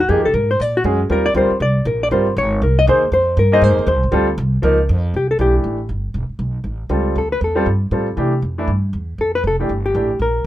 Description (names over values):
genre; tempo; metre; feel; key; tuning
jazz, small-group swing and bop; 238 BPM; 4/4; swing 60% on 8ths; unclear; A4 = 440 Hz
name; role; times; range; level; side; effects
hollow-body jazz guitar; melody; 0.0-10.4 s; F#4 to Eb5; -17 LUFS; left 1 dB; none
upright bass; bass; 0.0-10.5 s; E1 to C3; -19 LUFS; right 1 dB; none
warm grand piano; accompaniment; 0.1-10.1 s; E3 to C5; -19 LUFS; equal; none
room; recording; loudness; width
light reverb; minimal, uncompressed stereo recording; -15 LUFS; side -14 dB against mid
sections
0.0-5.1 A section; 5.1-10.5 B section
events
hollow-body jazz guitar solo 0.0-5.1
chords
0.1 Fm9; 0.6 F#add9; 1.1 Ebmaj7; 2.1 Gm7b5; 2.6 Cm7; 3.1 Fm7; 4.1 Dm7; 4.6 Db69; 5.1 Cmaj9; 6.2 E5; 6.7 A7alt; 7.2 Dm9; 8.2 C; 9.2 Fmaj9